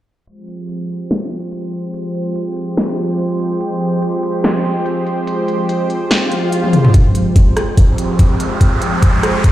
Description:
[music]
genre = heavy wobble dubstep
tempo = 144 BPM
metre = 4/4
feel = swing 55% on 16ths, half-time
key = F minor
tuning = A4 = 440 Hz
[part]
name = lush unison pad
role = sustained chords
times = 0.3-9.5 s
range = F3 to C5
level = -18 LUFS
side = right 1 dB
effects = chorus, sidechain pumping
[part]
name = big-room dance drum kit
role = drums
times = 0.3-9.5 s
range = hi-hat, rim click, snare drum, toms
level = -16 LUFS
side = left 1 dB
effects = none
[part]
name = swell and riser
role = sound effects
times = 6.2-9.5 s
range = none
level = -22 LUFS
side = right 1 dB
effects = none
[part]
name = electronic kick drum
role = drums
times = 6.9-9.5 s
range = none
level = -10 LUFS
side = equal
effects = none
[sound]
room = moderate lush hall reverb, RT60 2.0 s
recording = played on a big sound system in a bare room, stone room reverb, low-pass filter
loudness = -13 LUFS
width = side -14 dB against mid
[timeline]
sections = 0.3-6.9 A section; 6.9-9.5 B section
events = filter sweep on analog synth pad 0.3-6.9, 6.9-9.5; filter sweep 0.3-6.9, 6.9-9.5; swell 6.2-6.9; drum fill 6.6-6.9; build-up 6.9-9.5; riser 6.9-9.5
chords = 0.3 Fmadd9

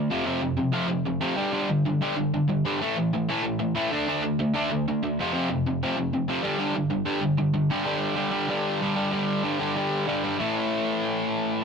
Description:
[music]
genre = punk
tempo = 190 BPM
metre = 4/4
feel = straight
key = unclear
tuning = A4 = 442 Hz
[part]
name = cranked stack guitar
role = solo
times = 0.0-11.6 s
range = F2 to D4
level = -23 LUFS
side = equal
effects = overdrive
[sound]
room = moderate studio reverb, RT60 0.6 s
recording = rough rehearsal-room recording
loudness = -23 LUFS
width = side -6 dB against mid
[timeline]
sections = 0.0-7.9 A section; 7.9-10.4 B section; 10.4-11.6 C section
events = none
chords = 0.1 F5; 1.4 G5; 2.8 A5; 3.9 D5; 5.2 F5; 6.4 G5; 10.4 A5

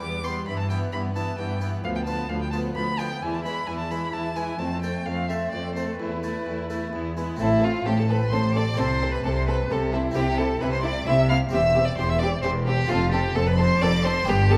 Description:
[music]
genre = classical, baroque-style concerto movement with solo episodes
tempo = 131 BPM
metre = 3/4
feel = straight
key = A minor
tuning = A4 = 443 Hz
[part]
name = rich chamber violin section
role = melody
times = 0.0-14.6 s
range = G4 to F6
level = -38 LUFS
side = equal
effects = none
[part]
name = rich violin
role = melody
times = 0.0-14.6 s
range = E4 to D6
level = -29 LUFS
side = equal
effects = none
[part]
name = rich chamber violin section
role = second line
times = 0.0-14.6 s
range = B3 to A4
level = -35 LUFS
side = equal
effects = none
[part]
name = harpsichord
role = accompaniment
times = 0.0-14.6 s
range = D2 to B4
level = -38 LUFS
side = equal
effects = none
[part]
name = rich chamber viola section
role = accompaniment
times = 0.0-14.6 s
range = E3 to C4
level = -37 LUFS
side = equal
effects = none
[part]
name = rich chamber cello section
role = bass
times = 0.0-14.6 s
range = D2 to C3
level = -29 LUFS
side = equal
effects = none
[part]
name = rich chamber double bass section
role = bass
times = 7.4-14.6 s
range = E1 to C2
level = -29 LUFS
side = equal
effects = none
[sound]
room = moderate recital hall reverb, RT60 1.4 s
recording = dark, warm production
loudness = -25 LUFS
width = mono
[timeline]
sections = 0.0-7.4 A section; 7.4-14.6 B section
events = none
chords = 0.5 Em/G; 1.8 Bdim/D; 3.2 E; 4.6 F; 6.0 Esus4; 6.9 E; 7.4 Am; 8.8 Am/C; 10.2 C; 11.5 C/E; 12.9 F

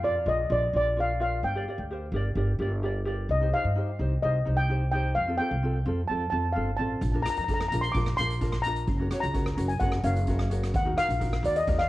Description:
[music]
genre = calypso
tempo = 129 BPM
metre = 4/4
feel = straight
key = Bb major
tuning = A4 = 440 Hz
[part]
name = steel pan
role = melody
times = 0.0-11.9 s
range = D5 to D6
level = -28 LUFS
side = left 1 dB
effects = cassette tape, analog delay
[part]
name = ukulele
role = accompaniment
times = 0.0-11.8 s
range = C4 to D5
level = -34 LUFS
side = equal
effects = cassette tape
[part]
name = upright bass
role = bass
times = 0.0-11.9 s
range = Gb1 to G2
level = -28 LUFS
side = equal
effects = none
[part]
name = street-band drum kit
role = drums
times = 7.0-11.9 s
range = hi-hat, kick drum, rim click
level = -32 LUFS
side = equal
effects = cassette tape
[sound]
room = light reverb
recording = home recording on cassette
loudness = -25 LUFS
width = side -16 dB against mid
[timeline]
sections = 0.0-11.9 A section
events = none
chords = 0.0 Bb; 1.4 Gm; 3.3 Cm; 5.2 Fadd9; 7.0 Bb; 8.9 Gbmaj7; 10.7 Ebmadd9

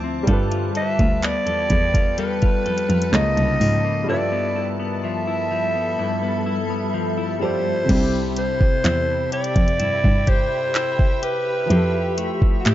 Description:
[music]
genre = contemporary R&B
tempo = 63 BPM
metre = 4/4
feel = straight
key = C major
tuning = A4 = 440 Hz
[part]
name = warm baby grand piano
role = accompaniment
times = 0.0-12.7 s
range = C3 to E5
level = -29 LUFS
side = right 2 dB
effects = analog delay
[part]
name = granular cloud pad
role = sustained chords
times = 0.0-12.7 s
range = G3 to E6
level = -30 LUFS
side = equal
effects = built-in reverb, sidechain pumping
[part]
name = clean electric guitar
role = arpeggios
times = 0.0-12.7 s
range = G2 to A4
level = -26 LUFS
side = left 5 dB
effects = analog delay
[part]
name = muted cello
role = bass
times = 0.0-12.7 s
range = C2 to A2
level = -22 LUFS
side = equal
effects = none
[part]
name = smooth R&B drum kit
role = drums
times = 0.3-12.7 s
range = crash cymbal, handclaps, hi-hat, kick drum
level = -20 LUFS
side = equal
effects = none
[part]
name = growling alto saxophone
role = melody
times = 0.8-12.7 s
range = F#4 to E5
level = -23 LUFS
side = right 1 dB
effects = analog delay
[sound]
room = small room ambience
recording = echo-heavy mix, nothing above 7.6 kHz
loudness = -18 LUFS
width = side -13 dB against mid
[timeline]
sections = 0.0-7.9 A section; 7.9-12.7 B section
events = break 4.1-7.9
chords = 0.3 G9; 3.1 Db69; 4.1 G13; 7.9 Cmaj7; 11.7 Fmaj9

